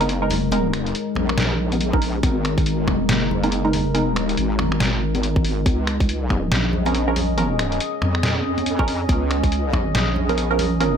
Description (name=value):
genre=deep dubstep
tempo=140 BPM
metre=4/4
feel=swing 61% on 16ths, half-time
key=unclear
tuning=A4 = 440 Hz
part: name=deep dark ambient pad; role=sustained chords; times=0.0-11.0 s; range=G#3 to D#5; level=-25 LUFS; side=left 1 dB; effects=chorus, built-in reverb
part: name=filtered dub chord stab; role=stabs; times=0.0-4.1, 6.9-10.9 s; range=E#3 to A#4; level=-25 LUFS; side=right 4 dB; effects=phaser, dub echo
part: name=wobble bass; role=bass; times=0.0-11.0 s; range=F#1 to E#2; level=-23 LUFS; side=equal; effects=chorus
part: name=trip hop sampler-style drum kit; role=drums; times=0.0-10.9 s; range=finger snaps, hi-hat, snare drum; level=-25 LUFS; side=equal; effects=small room ambience
part: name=congas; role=percussion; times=0.0-10.9 s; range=none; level=-29 LUFS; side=left 3 dB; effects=dub echo
part: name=electronic kick drum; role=drums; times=1.9-9.8 s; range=none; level=-20 LUFS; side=equal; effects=small room ambience
room=light reverb, digital ambience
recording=none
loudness=-18 LUFS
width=side -7 dB against mid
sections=0.0-11.0 A section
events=none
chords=0.0 G#sus2; 5.7 C#6